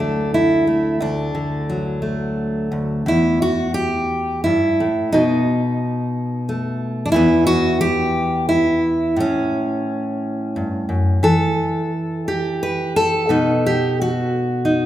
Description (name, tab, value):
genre	folk, solo fingerstyle acoustic guitar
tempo	88 BPM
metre	3/4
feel	rubato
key	unclear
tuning	A4 = 439 Hz
part	fingerpicked steel-string acoustic guitar	solo	0.0-14.9 s	D2 to B4	-17 LUFS	equal	none
room	wet recital hall reverb, RT60 1.8 s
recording	recorded in a church or concert hall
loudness	-17 LUFS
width	side -12 dB against mid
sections	0.0-3.1 A section; 3.1-14.9 B section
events	none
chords	0.0 D; 3.1 Em; 5.1 B7; 7.1 Em; 9.2 A; 11.3 N.C.; 13.3 B7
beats	0.33 | 1.00 1.67 2.37 | 3.08 3.77 4.46 | 5.14 5.82 6.48 | 7.14 7.81 8.49 | 9.17 9.86 10.55 | 11.25 11.94 12.62 | 13.29 13.97 14.65